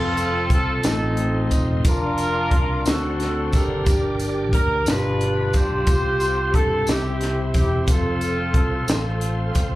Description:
slow gospel; 60 BPM (dotted quarters); 6/8; straight; F major; A4 = 440 Hz
clear horn section; melody; 0.0-9.8 s; C4 to C5; -24 LUFS; equal; slapback echo
mellow tine electric piano; accompaniment; 0.0-9.8 s; G2 to F#5; -27 LUFS; left 1 dB; medium stereo tremolo
bright tonewheel organ; sustained chords; 0.0-9.8 s; G4 to D6; -33 LUFS; right 2 dB; fast rotary speaker, chorus vibrato
fingered electric bass; bass; 0.0-9.8 s; E1 to G2; -25 LUFS; equal
crisp fusion drum kit; drums; 0.2-9.7 s; hi-hat, kick drum, snare drum; -22 LUFS; equal
tambourine; percussion; 0.2-9.8 s; -37 LUFS; right 1 dB
little or no reverb; live gig heard through the venue's PA, club reverb; -18 LUFS; side -16 dB against mid
0.0-9.8 A section
0.0 F; 0.8 F7/A; 1.9 Bb/F; 2.9 D7; 3.9 Gm; 4.9 G7; 5.9 Csus4; 6.9 C; 7.9 F
0.85 | 1.85 2.86 | 3.87 4.87 | 5.88 6.88 | 7.88 8.88

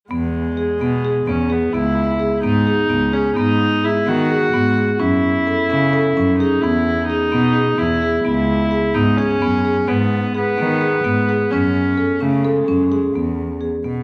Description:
contemporary instrumental, chamber music in an uneven meter; 258 BPM (eighths); 7/8; straight; E major; A4 = 440 Hz
rich viola; second line; 0.1-13.1 s; G#3 to F#4; -23 LUFS; equal
marimba with medium mallets; arpeggios; 0.1-14.0 s; B3 to A4; -21 LUFS; equal
dark cello; bass; 0.1-14.0 s; C#2 to D#3; -24 LUFS; equal
wet recital hall reverb, RT60 1.6 s; recorded in a church or concert hall; -18 LUFS; mono
0.1-13.2 A section
0.1 E; 1.7 C#m7; 3.4 G#m7; 5.0 F#m7; 6.6 Emaj7; 8.3 C#m7; 9.9 G#m; 11.5 F#madd9; 13.2 E
| 0.12 0.35 0.58 0.82 1.05 1.28 1.52 | 1.75 1.98 2.21 2.45 2.68 2.91 3.15 | 3.38 3.61 3.84 4.08 4.31 4.54 4.77 | 5.01 5.24 5.47 5.71 5.94 6.17 6.40 | 6.63 6.87 7.10 7.33 7.57 7.80 8.03 | 8.26 8.50 8.73 8.96 9.19 9.43 9.66 | 9.89 10.12 10.36 10.59 10.82 11.06 11.29 | 11.52 11.76 11.99 12.22 12.45 12.69 12.92 | 13.15 13.39 13.62 13.85

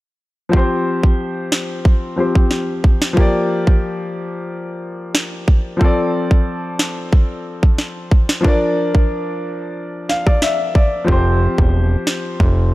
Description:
dancehall; 91 BPM; 4/4; straight; A4 = 440 Hz
clear grand piano; accompaniment; 0.5-12.7 s; F3 to F5; -20 LUFS; left 2 dB
island pop drum kit; drums; 0.5-12.6 s; kick drum, rim click, snare drum; -14 LUFS; equal; overdrive
fat analog bass; bass; 11.1-12.7 s; E1 to F1; -15 LUFS; equal
digital ambience; dark, warm production; -14 LUFS; side -18 dB against mid
0.5-12.7 A section
grand piano fill 9.8-11.1
0.5 Fsus2; 3.2 Gm7; 5.8 Dm7; 8.4 Bb; 11.1 Fsus2
| 0.53 1.19 1.85 2.51 | 3.17 3.83 4.49 5.15 | 5.81 6.47 7.13 7.79 | 8.45 9.10 9.76 10.42 | 11.08 11.74 12.40

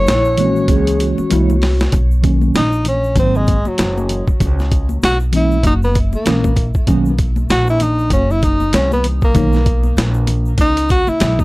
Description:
hip hop, jazz-hop; 97 BPM; 4/4; swing 59% on 16ths; B major; A4 = 437 Hz
breathy tenor saxophone; melody; 0.0-11.4 s; F#3 to C#5; -19 LUFS; equal; tape echo
vibraphone with soft mallets; second line; 0.0-1.9 s; E4 to G#4; -22 LUFS; left 2 dB
upright bass; bass; 0.0-11.4 s; F#1 to C#2; -17 LUFS; equal; transformer saturation
boom bap sampler-style drum kit; drums; 0.1-11.4 s; hi-hat, kick drum, snare drum; -17 LUFS; equal
tube shaker and congas; percussion; 0.1-11.4 s; -28 LUFS; left 4 dB
mellow tine electric piano; accompaniment; 0.4-9.6 s; D#3 to E4; -17 LUFS; right 1 dB; medium stereo tremolo
little or no reverb; dry, gritty hardware recording; -12 LUFS; side -20 dB against mid
0.0-1.9 A section; 1.9-11.4 B section
drum fill 0.7-1.9; tenor saxophone solo 1.9-11.4
0.0 F#9; 1.9 Bmaj7; 3.2 G#7; 4.4 C#m7; 5.6 F#7; 6.9 Bmaj7
0.07 0.69 1.31 | 1.93 2.54 3.16 3.78 | 4.40 5.02 5.64 6.26 | 6.88 7.49 8.11 8.73 | 9.35 9.97 10.59 11.21

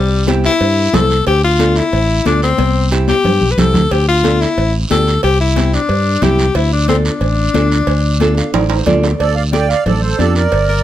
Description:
latin, cumbia; 182 BPM; 4/4; straight; D minor; A4 = 440 Hz
clear tenor saxophone; second line; 0.0-10.8 s; G3 to B4; -16 LUFS; left 4 dB
fingered electric bass; bass; 0.0-10.8 s; G1 to G2; -15 LUFS; equal
nylon-string guitar; accompaniment; 0.3-10.4 s; C4 to F5; -19 LUFS; right 3 dB
congas; percussion; 0.3-10.8 s; -20 LUFS; left 3 dB
cowbell and timbales; percussion; 0.3-10.7 s; -24 LUFS; right 5 dB
guiro; percussion; 0.3-10.8 s; -27 LUFS; right 4 dB
accordion; melody; 9.2-10.8 s; A4 to G5; -16 LUFS; right 6 dB; light tremolo tuning
little or no reverb; close, detailed microphones; -11 LUFS; side -12 dB against mid
0.0-9.2 A section; 9.2-10.8 B section
tenor saxophone solo 0.0-9.2; drum fill 2.6-3.9, 8.5-9.2; nylon-string guitar fill 8.2-9.2
0.0 C; 1.3 Dm; 2.6 C; 3.9 Dm; 5.2 C; 6.6 Dm
0.27 0.60 0.94 | 1.26 1.60 1.93 2.26 | 2.59 2.92 3.25 3.58 | 3.91 4.24 4.57 4.90 | 5.23 5.56 5.89 6.22 | 6.55 6.88 7.22 7.55 | 7.88 8.21 8.54 8.87 | 9.20 9.53 9.86 10.19 | 10.52

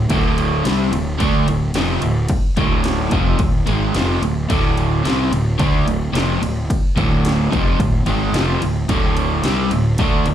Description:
blues rock power trio and southern rock; 109 BPM; 4/4; straight; A4 = 441 Hz
crunchy overdriven guitar; riff; 0.0-10.3 s; D2 to D4; -18 LUFS; equal
fuzz fingered electric bass; bass; 0.0-10.3 s; D1 to D2; -21 LUFS; equal; overdrive
house drum kit; drums; 0.1-10.3 s; kick drum, ride cymbal, snare drum; -21 LUFS; equal; overdrive
light reverb; live gig heard through the venue's PA, club reverb; -15 LUFS; side -10 dB against mid
0.0-10.3 A section
0.0 D5
| 0.10 0.65 1.20 1.74 | 2.29 2.84 3.39 3.94 | 4.49 5.04 5.58 6.13 | 6.68 7.23 7.78 8.33 | 8.88 9.43 9.98

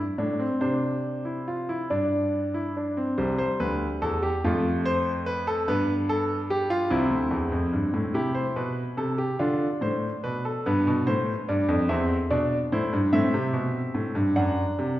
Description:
classical, baroque-style 3-part fugue for grand piano; 48 BPM (dotted quarters); 6/8; straight; C major; A4 = 440 Hz
clear grand piano; solo; 0.0-15.0 s; C2 to F#5; -23 LUFS; equal
wet recital hall reverb, RT60 1.5 s; heard from further back in the room; -23 LUFS; side -14 dB against mid
0.0-3.2 A section; 3.2-8.1 B section; 8.1-15.0 A section
0.0 D7(no3); 0.6 Cadd9; 1.9 G5; 3.2 C; 4.4 F; 5.7 G7; 6.9 C; 8.1 Am7; 9.4 Dm; 10.7 G; 11.9 C/E; 13.1 Am7; 14.4 D/F#
| 0.61 1.91 | 3.19 4.44 | 5.67 6.91 | 8.15 9.40 | 10.66 11.89 | 13.13 14.37

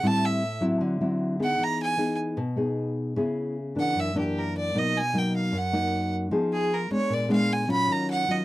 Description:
bossa nova; 152 BPM; 4/4; straight; A4 = 441 Hz
clear fiddle; melody; 0.0-8.4 s; G4 to Cb6; -27 LUFS; right 2 dB
nylon-string guitar; accompaniment; 0.0-8.4 s; Gb2 to Ab4; -25 LUFS; left 1 dB
little or no reverb; dry, close 1970s-style studio recording; -24 LUFS; side -16 dB against mid
0.0-8.4 A section
fiddle solo 0.0-8.4
0.0 Am7; 0.8 D9; 1.6 Emaj7; 3.2 Dbm7; 4.0 Gbaug7; 4.7 Bmaj7; 6.3 Fm7b5; 7.1 Bb7b9; 7.9 Ebm9
| 0.02 0.41 0.80 1.20 | 1.59 1.99 2.38 2.77 | 3.17 3.56 3.95 4.35 | 4.74 5.13 5.53 5.92 | 6.31 6.71 7.10 7.49 | 7.88 8.28

